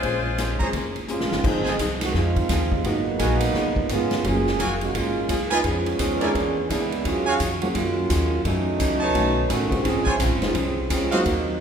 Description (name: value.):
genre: jazz, big band swing.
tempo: 171 BPM.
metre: 4/4.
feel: swing 62% on 8ths.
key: unclear.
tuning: A4 = 438 Hz.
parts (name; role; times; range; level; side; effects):
bright saxophone section; melody; 0.0-1.1 s; Ab3 to C5; -27 LUFS; left 3 dB; none.
archtop guitar, miked and amplified; accompaniment; 0.0-11.5 s; Gb2 to C5; -30 LUFS; left 3 dB; none.
upright bass; bass; 0.0-11.6 s; E1 to Gb2; -27 LUFS; equal; none.
swinging big-band drum kit; drums; 0.0-11.4 s; crash cymbal, hi-hat, kick drum, ride cymbal, snare drum; -28 LUFS; equal; none.
dark grand piano; accompaniment; 0.6-11.2 s; F3 to Cb5; -29 LUFS; left 1 dB; none.
bright trumpet section; stabs; 0.6-11.2 s; Eb4 to Bb5; -27 LUFS; right 2 dB; none.
warm trombone section; second line; 1.1-11.6 s; Db3 to Ab4; -24 LUFS; right 3 dB; none.
room: wet recital hall reverb, RT60 1.4 s.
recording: recorded in a church or concert hall.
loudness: -20 LUFS.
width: side -7 dB against mid.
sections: 0.0-1.4 A section; 1.4-11.6 B section.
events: drum fill 1.1-1.4; trombone section solo 1.4-11.6.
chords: 0.0 Bbm9; 1.4 Fm7; 2.8 Abm9; 3.5 Db7; 4.2 Gbmaj9; 5.6 Fm7b5; 6.3 E7#11; 7.0 Ebm11; 8.4 Gbm7; 9.1 B9; 9.8 Dbmaj7.